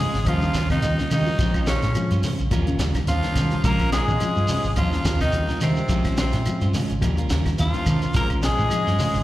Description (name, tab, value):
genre	afrobeat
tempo	107 BPM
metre	4/4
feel	swing 55% on 16ths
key	Bb dorian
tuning	A4 = 440 Hz
part	raspy tenor saxophone	melody	0.0-9.2 s	C4 to Bb4	-27 LUFS	left 1 dB	plate reverb, slapback echo
part	brilliant trombone section	second line	0.0-9.2 s	C3 to Bb3	-32 LUFS	left 1 dB	slapback echo, plate reverb
part	felt-muted upright piano	second line	0.0-9.2 s	C5 to Bb5	-35 LUFS	right 2 dB	none
part	electric guitar at the edge of break-up	arpeggios	0.0-9.2 s	C3 to F3	-29 LUFS	left 3 dB	ensemble chorus, plate reverb
part	electric guitar at the edge of break-up	stabs	0.0-9.2 s	G3 to C5	-31 LUFS	right 5 dB	slapback echo, plate reverb
part	hollow-body short-scale fingered electric bass	bass	0.1-9.2 s	Ab1 to Eb3	-23 LUFS	equal	none
part	compact cocktail drum kit	drums	0.1-9.1 s	hi-hat, kick drum, snare drum	-27 LUFS	equal	none
part	shekere	percussion	0.1-9.2 s	none	-32 LUFS	right 1 dB	none
part	bright reed electric piano	accompaniment	0.3-9.0 s	G3 to F4	-33 LUFS	left 1 dB	spring reverb, plate reverb
part	claves	percussion	0.3-8.9 s	none	-42 LUFS	right 1 dB	none
part	congas	percussion	0.5-9.1 s	none	-29 LUFS	right 1 dB	none
room	moderate club reverb, RT60 0.5 s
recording	live gig heard through the venue's PA, recital hall reverb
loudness	-19 LUFS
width	side -15 dB against mid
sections	0.0-9.2 A section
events	none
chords	0.3 Eb9; 1.4 Bbm9; 2.5 Eb9; 3.6 Bbm9; 4.8 Eb9; 5.9 Bbm9; 7.0 Eb9; 8.1 Bbm9